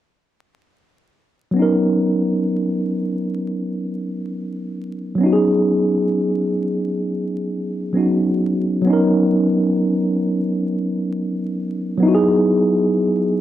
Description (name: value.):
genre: hip hop.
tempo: 66 BPM.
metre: 4/4.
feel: swing 62% on 16ths.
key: B major.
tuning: A4 = 440 Hz.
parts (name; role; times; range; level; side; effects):
mellow tine electric piano; accompaniment; 1.5-13.4 s; F#3 to A#4; -17 LUFS; equal; medium stereo tremolo, cassette tape.
room: moderate studio reverb, RT60 0.6 s.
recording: vinyl crackle.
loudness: -17 LUFS.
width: side -12 dB against mid.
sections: 1.6-13.4 A section.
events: none.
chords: 1.6 Bmaj9; 5.2 C#9sus4; 8.8 Bmaj9; 12.0 Emaj9.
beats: | 1.56 2.47 3.38 4.29 | 5.20 6.11 7.02 7.93 | 8.84 9.75 10.65 11.56 | 12.47 13.38.